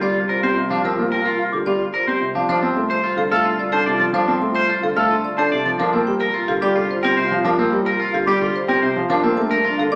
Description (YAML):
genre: classical, minimalist pattern music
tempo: 109 BPM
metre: 3/4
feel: straight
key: unclear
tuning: A4 = 440 Hz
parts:
  - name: marimba with medium hard mallets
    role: melody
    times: 0.0-10.0 s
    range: G4 to C6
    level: -27 LUFS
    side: equal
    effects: none
  - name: alto flute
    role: second line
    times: 0.0-9.9 s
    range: D4 to F4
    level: -31 LUFS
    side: equal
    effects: none
  - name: warm concert grand piano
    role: accompaniment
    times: 0.0-10.0 s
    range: C3 to D4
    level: -24 LUFS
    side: equal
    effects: none
  - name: twangy electric guitar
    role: arpeggios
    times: 0.0-9.8 s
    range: C4 to D5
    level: -24 LUFS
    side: equal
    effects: none
  - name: rich cello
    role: bass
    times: 0.0-10.0 s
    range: C2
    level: -34 LUFS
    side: equal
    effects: none
  - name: mellow hollow silver concert flute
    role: arpeggios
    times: 0.7-10.0 s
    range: F5 to A6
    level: -28 LUFS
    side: equal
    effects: none
room: wet large studio reverb, RT60 1.2 s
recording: none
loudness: -19 LUFS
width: mono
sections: 0.0-2.5 A section; 2.5-10.0 A section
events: none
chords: 0.0 Gm7/C; 2.5 F/C; 5.8 C7sus4; 9.1 Bbmaj7/C